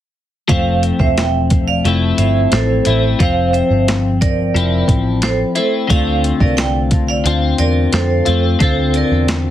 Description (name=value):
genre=indie pop, bedroom pop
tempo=89 BPM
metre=4/4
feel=straight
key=F major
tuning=A4 = 440 Hz
part: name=vibraphone with hard mallets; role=second line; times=0.5-9.3 s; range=A4 to G5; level=-19 LUFS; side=right 4 dB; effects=lush chorus, ping-pong delay
part: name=clean electric guitar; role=accompaniment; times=0.5-9.5 s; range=D3 to F4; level=-17 LUFS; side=left 4 dB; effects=analog chorus, vibrato effect
part: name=vintage muted picked electric bass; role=bass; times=0.5-9.5 s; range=E1 to F2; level=-17 LUFS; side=equal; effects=none
part: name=boom bap sampler-style drum kit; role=drums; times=0.5-9.4 s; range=hi-hat, kick drum, snare drum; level=-17 LUFS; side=equal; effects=none
room=light reverb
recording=heavily compressed radio sound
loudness=-12 LUFS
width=side -12 dB against mid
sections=0.5-9.5 A section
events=none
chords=0.5 Fmaj7; 5.9 Dm7